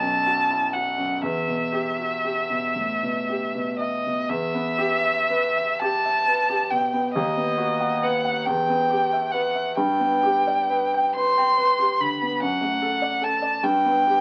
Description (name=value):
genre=classical, romantic duo for violin and grand piano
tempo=38-50 BPM (dotted quarters)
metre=6/8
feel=rubato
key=E minor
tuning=A4 = 440 Hz
part: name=rich violin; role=melody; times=0.0-14.2 s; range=D#5 to C6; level=-24 LUFS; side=equal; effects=none
part: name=warm concert grand piano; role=accompaniment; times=0.0-14.2 s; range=B1 to G5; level=-28 LUFS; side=equal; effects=none
room=moderate studio reverb, RT60 0.8 s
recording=very old 78 rpm record, vinyl crackle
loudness=-23 LUFS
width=mono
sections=0.0-4.3 A section; 4.3-14.2 B section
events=none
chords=0.0 B5; 1.2 Em; 7.1 B/D#; 8.4 Em; 9.7 G; 12.4 D/F#; 13.6 G